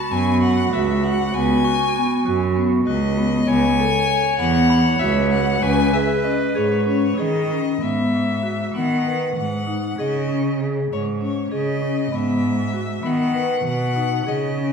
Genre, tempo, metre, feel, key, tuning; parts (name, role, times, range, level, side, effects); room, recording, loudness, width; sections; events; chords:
contemporary instrumental, chamber music in an uneven meter; 196 BPM (eighths); 7/8; straight; A4 = 441 Hz
clear violin; melody; 0.0-14.7 s; C#5 to A5; -25 LUFS; left 7 dB
bright clarinet; second line; 0.0-7.5 s; F#4 to C#5; -24 LUFS; right 4 dB
glockenspiel with brass mallets; texture; 0.0-5.9 s; B5 to C#6; -33 LUFS; equal
vibraphone with medium hard mallets; arpeggios; 0.1-14.7 s; B3 to B4; -22 LUFS; left 2 dB
clear cello; bass; 0.1-14.7 s; C#2 to D#3; -22 LUFS; right 3 dB
wet recital hall reverb, RT60 1.3 s; heard from further back in the room; -17 LUFS; side -6 dB against mid
0.0-7.8 A section; 7.8-14.7 B section
0.0 B5/C#; 3.5 Asus2/C#; 5.6 C#5; 7.8 G#m7; 10.0 C#sus2; 12.1 G#m7